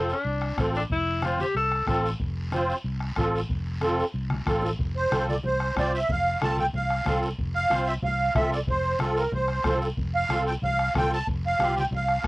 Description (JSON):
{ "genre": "latin, cumbia", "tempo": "185 BPM", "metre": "4/4", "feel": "straight", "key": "F major", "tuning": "A4 = 440 Hz", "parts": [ { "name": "clear tenor saxophone", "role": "second line", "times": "0.0-2.1 s", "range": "C4 to A4", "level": "-27 LUFS", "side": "left 2 dB", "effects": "none" }, { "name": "musette accordion", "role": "accompaniment", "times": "0.0-12.3 s", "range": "C4 to C5", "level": "-27 LUFS", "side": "right 1 dB", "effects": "none" }, { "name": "fingered electric bass", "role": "bass", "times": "0.0-12.3 s", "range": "F1 to C2", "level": "-29 LUFS", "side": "equal", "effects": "none" }, { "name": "guiro", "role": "percussion", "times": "0.1-12.3 s", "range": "none", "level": "-42 LUFS", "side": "equal", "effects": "none" }, { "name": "congas", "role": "percussion", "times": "0.3-12.3 s", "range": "none", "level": "-35 LUFS", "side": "left 1 dB", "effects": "none" }, { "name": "bombo", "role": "percussion", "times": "0.4-12.3 s", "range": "none", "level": "-31 LUFS", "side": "left 1 dB", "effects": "none" }, { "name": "musette accordion", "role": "melody", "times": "5.0-12.2 s", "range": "A4 to A5", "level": "-25 LUFS", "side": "right 1 dB", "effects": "cassette tape" } ], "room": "moderate booth ambience, RT60 0.2 s", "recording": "home recording on cassette", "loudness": "-23 LUFS", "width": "side -21 dB against mid", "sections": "0.0-4.8 A section; 4.8-12.3 B section", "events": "tenor saxophone solo 0.0-4.8; drum fill 4.3-4.8", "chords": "0.0 F", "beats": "0.25 0.58 | 0.90 1.23 1.55 1.87 | 2.20 2.52 2.85 3.17 | 3.50 3.82 4.14 4.47 | 4.79 5.12 5.44 5.76 | 6.09 6.41 6.74 7.06 | 7.38 7.71 8.03 8.35 | 8.68 9.00 9.33 9.65 | 9.97 10.30 10.62 10.95 | 11.27 11.59 11.92 12.24" }